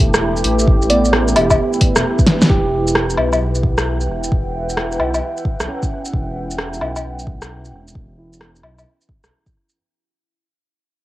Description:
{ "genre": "future garage", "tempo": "132 BPM", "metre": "4/4", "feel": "swing 65% on 16ths", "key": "E minor", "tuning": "A4 = 443 Hz", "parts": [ { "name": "tine electric piano", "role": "accompaniment", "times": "0.0-9.8 s", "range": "B3 to G4", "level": "-24 LUFS", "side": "right 3 dB", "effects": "overdrive, sidechain pumping, low-pass filter, cassette tape, tape echo" }, { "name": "dark analog pad", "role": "sustained chords", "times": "0.0-9.8 s", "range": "A3 to G5", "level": "-22 LUFS", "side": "equal", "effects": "chorus, sidechain pumping, cassette tape" }, { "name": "dark detuned saw bass", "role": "bass", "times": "0.0-9.3 s", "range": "E1 to B1", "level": "-22 LUFS", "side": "equal", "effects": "none" }, { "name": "deep house drum kit", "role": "drums", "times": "0.1-9.8 s", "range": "hi-hat, rim click, shaker, snare drum, woodblock", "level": "-18 LUFS", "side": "equal", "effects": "cassette tape" }, { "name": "electronic kick drum", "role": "drums", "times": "0.7-9.5 s", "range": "none", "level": "-16 LUFS", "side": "equal", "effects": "cassette tape" }, { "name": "bell-like FM electric piano", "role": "melody", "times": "0.9-1.3 s", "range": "D5", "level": "-23 LUFS", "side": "equal", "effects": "chorus, cassette tape, analog delay" } ], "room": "moderate spring reverb, RT60 1.8 s", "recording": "home recording on cassette", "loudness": "-14 LUFS", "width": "side -16 dB against mid", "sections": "0.0-2.5 A section; 2.5-9.8 B section", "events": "drum fill 2.3; fade-out 2.5-9.8; filter sweep on tine electric piano 2.5-9.8", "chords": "0.0 A9sus4; 2.5 Em" }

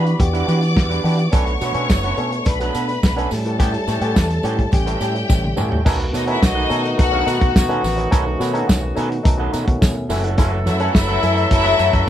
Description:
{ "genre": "disco", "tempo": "106 BPM", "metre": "4/4", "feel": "straight", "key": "unclear", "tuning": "A4 = 440 Hz", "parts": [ { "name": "clear studio string section", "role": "second line", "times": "0.0-12.0 s", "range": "D#4 to D6", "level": "-22 LUFS", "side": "left 4 dB", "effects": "none" }, { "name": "electric guitar through a small old amp", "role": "accompaniment", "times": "0.0-12.1 s", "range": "D4 to G5", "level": "-28 LUFS", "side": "right 6 dB", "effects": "none" }, { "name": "mellow clav", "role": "accompaniment", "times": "0.0-11.9 s", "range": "A2 to A4", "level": "-26 LUFS", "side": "left 1 dB", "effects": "auto-wah" }, { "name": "percussive tonewheel organ", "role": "sustained chords", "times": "0.0-12.1 s", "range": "D#3 to G4", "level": "-27 LUFS", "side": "right 1 dB", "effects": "overdrive, slow rotary speaker" }, { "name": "deep dub fingered electric bass", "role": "bass", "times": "0.0-12.0 s", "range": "F#1 to E3", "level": "-22 LUFS", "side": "equal", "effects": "none" }, { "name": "warm soul drum kit", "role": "drums", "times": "0.1-12.1 s", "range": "crash cymbal, hi-hat, kick drum, snare drum, toms", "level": "-18 LUFS", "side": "equal", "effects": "none" }, { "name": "tambourine", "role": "percussion", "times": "1.3-11.9 s", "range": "none", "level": "-34 LUFS", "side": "right 4 dB", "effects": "none" }, { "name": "clear horn section", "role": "stabs", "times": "5.9-12.1 s", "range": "D#3 to A4", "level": "-24 LUFS", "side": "left 1 dB", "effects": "none" } ], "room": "light reverb", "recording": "band playing live in one room", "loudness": "-16 LUFS", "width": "side -11 dB against mid", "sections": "0.0-5.9 A section; 5.9-12.1 B section", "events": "drum fill 5.3-5.9", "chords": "0.0 Em9; 1.3 Bm7; 3.3 A7; 5.9 B7; 10.1 F#m7" }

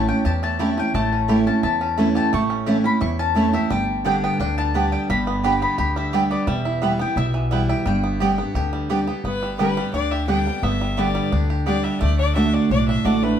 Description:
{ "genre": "bluegrass", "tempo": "174 BPM", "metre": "4/4", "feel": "straight", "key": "G lydian, G major from 9.2 s", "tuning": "A4 = 440 Hz", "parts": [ { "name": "bluegrass banjo", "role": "melody", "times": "0.0-13.4 s", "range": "E3 to G4", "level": "-29 LUFS", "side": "right 3 dB", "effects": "plate reverb" }, { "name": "mandolin", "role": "melody", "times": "0.0-8.9 s", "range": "D5 to C#6", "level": "-25 LUFS", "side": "left 4 dB", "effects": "plate reverb, tape echo" }, { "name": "picked steel-string acoustic guitar", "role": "accompaniment", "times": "0.0-13.4 s", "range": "E2 to G4", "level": "-22 LUFS", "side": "right 1 dB", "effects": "none" }, { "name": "upright bass", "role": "bass", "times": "0.0-13.3 s", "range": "E1 to E2", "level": "-24 LUFS", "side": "left 1 dB", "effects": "none" }, { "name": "mandolin", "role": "stabs", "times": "0.6-13.1 s", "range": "A3 to A5", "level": "-26 LUFS", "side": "right 7 dB", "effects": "none" }, { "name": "clear fiddle", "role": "second line", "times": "9.3-13.4 s", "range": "B4 to G5", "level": "-26 LUFS", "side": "left 6 dB", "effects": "none" } ], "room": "wet studio reverb, RT60 0.7 s", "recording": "heard from further back in the room", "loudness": "-18 LUFS", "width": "side -9 dB against mid", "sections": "0.0-9.2 A section; 9.2-13.4 B section", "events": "fiddle solo 9.2-13.4", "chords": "0.0 A; 3.7 G; 6.5 Em; 7.9 G; 12.0 D" }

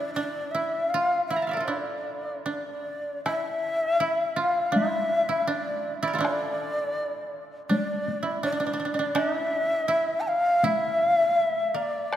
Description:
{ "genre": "japanese traditional, Japanese chamber music", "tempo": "80 BPM", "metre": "4/4", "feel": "rubato", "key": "D hirajoshi", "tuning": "A4 = 440 Hz", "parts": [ { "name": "breathy long shakuhachi", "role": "melody", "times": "0.0-12.2 s", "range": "D5 to A5", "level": "-25 LUFS", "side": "left 1 dB", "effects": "none" }, { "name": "koto", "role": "second line", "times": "0.0-12.2 s", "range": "D4 to Bb5", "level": "-30 LUFS", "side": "right 3 dB", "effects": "none" }, { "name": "taiko ensemble", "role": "percussion", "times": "3.3-12.2 s", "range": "none", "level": "-31 LUFS", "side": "left 1 dB", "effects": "none" } ], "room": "wet church reverb, RT60 3.6 s", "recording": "none", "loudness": "-24 LUFS", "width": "side -11 dB against mid", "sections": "0.0-3.2 A section; 3.2-12.2 B section", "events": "none", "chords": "none" }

